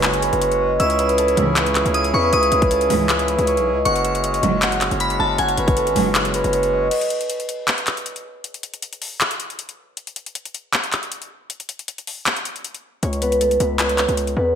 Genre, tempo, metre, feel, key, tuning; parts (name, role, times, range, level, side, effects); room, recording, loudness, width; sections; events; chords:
hip hop, trap; 157 BPM; 4/4; half-time; C# minor; A4 = 440 Hz
concert harp; melody; 0.0-8.5, 13.0-14.6 s; A3 to F#6; -20 LUFS; equal; low-pass filter, diffuse ambient delay
glassy synth bell; second line; 0.0-6.5 s; G#5 to E6; -24 LUFS; left 1 dB; chorus, phaser, diffuse ambient delay
accordion; sustained chords; 0.0-6.9 s; C#3 to G#4; -24 LUFS; right 1 dB
warm symphonic string section; stabs; 0.0-6.2 s; C#2 to F#3; -25 LUFS; right 4 dB
distorted 808-style bass; bass; 0.0-6.9, 13.0-14.5 s; F#1 to E2; -24 LUFS; left 1 dB; distortion
trap drum kit; drums; 0.0-14.4 s; crash cymbal, handclaps, hi-hat, kick drum; -22 LUFS; left 1 dB
moderate plate reverb, RT60 1.2 s, small room reverb; dreamy mix soaked in reverb; -17 LUFS; side -8 dB against mid
0.0-6.9 A section; 6.9-14.6 B section
break 6.9-13.0
0.0 F#sus2; 0.8 C#m; 3.9 F#sus2; 6.9 N.C.; 13.0 C#m